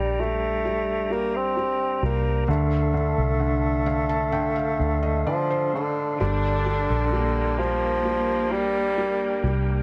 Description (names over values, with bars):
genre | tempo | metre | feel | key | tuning
pop | 65 BPM | 4/4 | straight | G minor | A4 = 440 Hz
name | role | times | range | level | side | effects
mellow bassoon | melody | 0.0-9.6 s | D3 to C4 | -28 LUFS | equal | tape echo
felt-muted upright piano | accompaniment | 0.0-9.8 s | D3 to A5 | -31 LUFS | equal | none
tonewheel organ | sustained chords | 0.0-9.8 s | D3 to Bb5 | -37 LUFS | equal | overdrive, fast rotary speaker
vintage muted fingered electric bass | bass | 0.0-9.8 s | G1 to D2 | -28 LUFS | equal | none
rich symphonic cello section | second line | 6.2-9.8 s | Bb3 to D4 | -33 LUFS | equal | none
room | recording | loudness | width
light reverb | none | -24 LUFS | mono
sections
0.0-6.2 A section; 6.2-9.8 B section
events
felt piano fill 3.4-6.2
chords
0.0 Gm; 2.5 Dm; 6.2 Gm